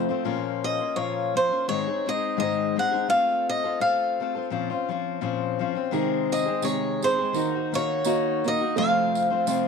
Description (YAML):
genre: acoustic folk duo or small band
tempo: 85 BPM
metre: 4/4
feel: swing 56% on 8ths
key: Bb minor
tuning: A4 = 439 Hz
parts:
  - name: picked steel-string acoustic guitar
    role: accompaniment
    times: 0.0-9.7 s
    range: F2 to A4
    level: -27 LUFS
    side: left 11 dB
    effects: none
  - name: felt-muted upright piano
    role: arpeggios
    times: 0.0-0.3, 5.9-9.7 s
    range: Eb3 to Ab4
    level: -29 LUFS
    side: right 14 dB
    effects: none
  - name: picked swing-style acoustic guitar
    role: melody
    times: 0.6-9.7 s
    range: C5 to Gb5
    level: -24 LUFS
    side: right 1 dB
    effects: none
  - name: tambourine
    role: percussion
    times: 5.9-9.7 s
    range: none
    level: -38 LUFS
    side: right 19 dB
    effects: none
room: light reverb, studio ambience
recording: 1960s-style stereo with parts hard left and right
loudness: -22 LUFS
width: side -5 dB against mid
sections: 0.3-9.7 A section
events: none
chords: 0.3 Bbm; 1.7 Ab; 3.1 F/A; 4.5 Bbmadd9; 5.9 Ab/C; 7.3 Ebm; 8.8 F